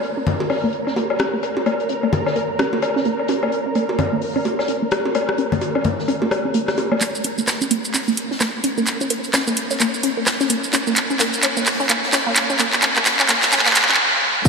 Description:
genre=minimal techno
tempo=129 BPM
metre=4/4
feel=swing 59% on 16ths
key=Bb minor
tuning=A4 = 438 Hz
part: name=street-band drum kit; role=drums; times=0.0-14.5 s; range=hi-hat, snare drum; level=-32 LUFS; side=left 3 dB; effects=sidechain pumping on hats, high-pass filter on hats, low-pass filter on hats, high-pass filter on snare, low-pass filter on snare, high-pass filter on room, low-pass filter on room
part: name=flickering grainy texture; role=texture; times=0.0-7.0 s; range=Bb4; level=-28 LUFS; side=right 2 dB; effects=built-in reverb, sidechain pumping
part: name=resonant blip pluck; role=riff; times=0.2-14.5 s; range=Bb3 to Db4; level=-22 LUFS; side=equal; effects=chorus, phaser, sidechain pumping, analog delay
part: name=electronic congas, woodblock, cowbell and rim click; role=percussion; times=0.3-7.0 s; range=none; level=-22 LUFS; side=left 2 dB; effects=analog delay
part: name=house drum kit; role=drums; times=7.0-14.5 s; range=handclaps, hi-hat, rim click, shaker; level=-17 LUFS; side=right 1 dB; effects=low-pass filter on perc, low-pass filter on hats, low-pass filter on snare, low-pass filter on room
part: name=electronic kick drum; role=drums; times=14.5 s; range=none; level=-10 LUFS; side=equal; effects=none
room=wet huge ambient reverb, RT60 7.2 s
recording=dreamy mix soaked in reverb, high-pass filter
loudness=-17 LUFS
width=side -4 dB against mid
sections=0.0-7.0 A section; 7.0-14.5 B section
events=build-up 7.0-14.5; drum fill 7.0-14.0; filter sweep on synth pluck 7.0-14.5; filter sweep 7.0-14.5; stop 14.0-14.5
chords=0.0 N.C.; 7.0 Bbm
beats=0.03 0.50 0.96 | 1.43 1.90 2.36 2.83 | 3.29 3.75 4.22 4.69 | 5.15 5.62 6.08 6.55 | 7.01 7.48 7.94 8.41 | 8.87 9.34 9.80 10.27 | 10.73 11.20 11.66 12.13 | 12.59 13.06 13.52 13.99 | 14.45

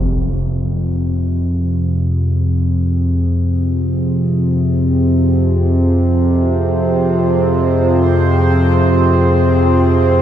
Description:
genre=dark ambient drone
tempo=free time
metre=none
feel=none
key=F minor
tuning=A4 = 440 Hz
part: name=dark analog pad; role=sustained chords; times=0.0-10.2 s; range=C4 to C5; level=-20 LUFS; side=right 1 dB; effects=chorus
part: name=analog drone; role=drone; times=0.0-10.2 s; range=F2 to C3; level=-13 LUFS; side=equal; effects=chorus
part: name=bubbling stepped-filter texture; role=texture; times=6.7-10.2 s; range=C4 to C5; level=-20 LUFS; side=right 4 dB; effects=chorus, built-in reverb
room=moderate huge ambient reverb, RT60 8.3 s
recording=dark, warm production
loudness=-12 LUFS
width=side -10 dB against mid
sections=0.0-10.2 A section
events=fade-in on analog synth pad 0.0-10.2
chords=0.0 Fm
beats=free time

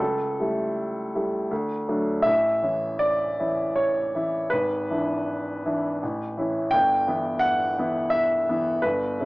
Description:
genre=classical, romantic character piece for solo piano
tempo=76-88 BPM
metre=3/4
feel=rubato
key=unclear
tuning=A4 = 439 Hz
part: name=clear grand piano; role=solo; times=0.0-9.3 s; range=G1 to G5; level=-22 LUFS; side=equal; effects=none
room=light reverb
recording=worn, warbling old tape, cassette tape, warbly pitch drift, small speaker sound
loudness=-22 LUFS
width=side -21 dB against mid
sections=0.0-9.3 A section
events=none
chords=0.0 A7/C#; 1.5 D; 2.3 A; 4.5 E7/G#; 6.0 A; 6.7 Em/G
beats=0.77 1.50 | 2.25 3.02 3.78 | 4.52 5.27 6.02 | 6.74 7.43 8.14 | 8.85

